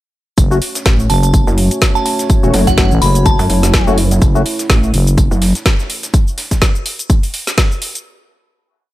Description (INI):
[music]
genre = bass house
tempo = 125 BPM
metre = 4/4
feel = swing 57% on 16ths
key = F# minor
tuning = A4 = 440 Hz
[part]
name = dark analog pad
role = sustained chords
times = 0.4-6.1 s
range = A3 to C#5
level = -22 LUFS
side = right 2 dB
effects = chorus, vintage 12-bit sampler grit, sidechain pumping
[part]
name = growling FM bass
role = bass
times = 0.4-5.3 s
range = E1 to A1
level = -13 LUFS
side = equal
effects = tube saturation, sidechain pumping
[part]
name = dusty soul sampler-style drum kit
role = drums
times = 0.4-7.9 s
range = hi-hat, snare drum, tambourine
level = -28 LUFS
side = equal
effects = sidechain pumping on perc, high-pass filter on perc, high-pass filter on snare, sidechain pumping on hats, high-pass filter on hats
[part]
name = electronic kick drum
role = drums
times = 0.4-7.7 s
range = none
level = -12 LUFS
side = equal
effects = none
[part]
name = garage drum kit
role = drums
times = 0.4-8.0 s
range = cabasa, hi-hat, snare drum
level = -19 LUFS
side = equal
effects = none
[part]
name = percussive organ stab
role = stabs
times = 0.5-4.4 s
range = A3 to F#4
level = -20 LUFS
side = left 4 dB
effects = ensemble chorus, cassette tape, sidechain pumping, dub echo
[part]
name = pulsing pluck wobble bass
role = bass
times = 0.9-5.5 s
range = F#1 to F#2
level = -13 LUFS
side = equal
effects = chorus, overdrive, sidechain pumping
[part]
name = glassy synth bell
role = melody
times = 1.1-3.9 s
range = F#5 to B5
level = -20 LUFS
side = right 1 dB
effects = chorus, phaser, dub echo
[sound]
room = little or no reverb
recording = none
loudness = -11 LUFS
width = side -16 dB against mid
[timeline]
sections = 0.4-8.1 drop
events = drop 0.4-8.1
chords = 0.4 F#m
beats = | 0.38 0.86 1.34 1.82 | 2.30 2.78 3.26 3.74 | 4.22 4.70 5.18 5.66 | 6.14 6.62 7.10 7.58